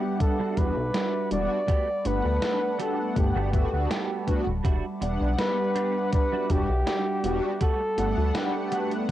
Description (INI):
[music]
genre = vaporwave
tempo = 81 BPM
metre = 4/4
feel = straight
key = G major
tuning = A4 = 440 Hz
[part]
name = warm flugelhorn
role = melody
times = 0.0-9.1 s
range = G4 to D5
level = -29 LUFS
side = equal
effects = tape echo
[part]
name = mellow synth brass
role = accompaniment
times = 0.0-9.1 s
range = G3 to F#5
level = -30 LUFS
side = equal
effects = ensemble chorus
[part]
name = warbly tape-like pad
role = sustained chords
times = 0.0-9.1 s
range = G3 to D6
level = -36 LUFS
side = right 1 dB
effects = chorus, built-in reverb, vintage 12-bit sampler grit
[part]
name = clean electric guitar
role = riff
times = 0.0-9.1 s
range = G3 to G4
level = -34 LUFS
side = right 7 dB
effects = ensemble chorus, analog delay
[part]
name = electronic kick drum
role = drums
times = 0.2-9.1 s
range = none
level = -25 LUFS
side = equal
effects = vintage 12-bit sampler grit, cassette tape
[part]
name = gated 80s digital drum machine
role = drums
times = 0.2-9.1 s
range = hi-hat, snare drum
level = -33 LUFS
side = equal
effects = gated reverb, gated reverb snare, vintage 12-bit sampler grit, cassette tape
[part]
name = chorused synth bass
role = bass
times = 0.6-8.3 s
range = D1 to D2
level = -27 LUFS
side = equal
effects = none
[sound]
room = little or no reverb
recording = home recording on cassette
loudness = -23 LUFS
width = side -13 dB against mid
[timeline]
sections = 0.0-9.1 A section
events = none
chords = 0.0 Em9; 1.7 Gmaj9; 4.6 Em9; 7.6 Gmaj9